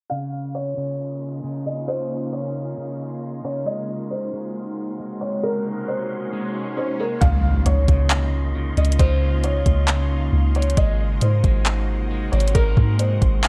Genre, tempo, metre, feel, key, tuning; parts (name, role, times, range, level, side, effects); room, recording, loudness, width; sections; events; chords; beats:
hip hop, atmospheric cloud-rap; 135 BPM; 4/4; half-time; Db major; A4 = 441 Hz
felt-muted upright piano; melody; 0.1-13.5 s; Bb4 to F5; -30 LUFS; equal; delay
ethereal airy pad; sustained chords; 1.1-13.5 s; C3 to Gb4; -33 LUFS; equal; ensemble chorus, built-in reverb, phaser, sidechain pumping
electric guitar at the edge of break-up; arpeggios; 0.1-13.5 s; Db3 to Bb4; -34 LUFS; equal; delay
wind-like tuned noise texture; texture; 0.7-13.5 s; Ab3 to C6; -40 LUFS; equal; built-in reverb
swell and impact; sound effects; 5.8-9.0 s; -34 LUFS; equal
soft 808-style bass; bass; 7.2-13.5 s; Ab1 to Ab2; -22 LUFS; equal
smooth R&B drum kit; drums; 7.2-13.5 s; handclaps, hi-hat, kick drum; -21 LUFS; equal; vintage 12-bit sampler grit
light reverb, digital ambience; low-pass filter; -22 LUFS; mono
0.1-7.2 A section; 7.2-13.5 B section
filter sweep 0.1-7.2; swell 5.8-7.2; impact 7.2-9.0
0.1 Dbmaj13; 3.7 Ab9; 7.2 Dbmaj13; 10.8 Ab9
| 0.10 0.55 0.99 1.44 | 1.88 2.33 2.77 3.22 | 3.66 4.11 4.55 4.99 | 5.44 5.88 6.33 6.77 | 7.22 7.66 8.11 8.55 | 8.99 9.44 9.88 10.33 | 10.77 11.22 11.66 12.11 | 12.55 12.99 13.44